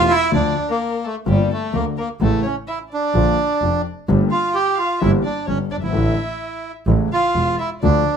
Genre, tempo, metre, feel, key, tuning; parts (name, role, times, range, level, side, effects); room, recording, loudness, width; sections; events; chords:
tango; 128 BPM; 4/4; rubato; A4 = 441 Hz
bandoneon; melody; 0.0-8.2 s; G3 to G4; -20 LUFS; right 2 dB; plate reverb
warm violin; second line; 0.0-8.1 s; G4 to G5; -30 LUFS; left 3 dB
warm concert grand piano; accompaniment; 0.0-8.0 s; E1 to G4; -21 LUFS; left 3 dB
clear double bass; bass; 0.0-8.0 s; E1 to D2; -21 LUFS; right 2 dB
light reverb; close, detailed microphones; -17 LUFS; side -7 dB against mid
0.3-8.2 A section
0.3 Dm; 1.3 Gm7; 2.2 A; 3.1 Bb; 4.1 Gmadd9; 5.0 Edim/G; 5.9 Asus4; 6.9 A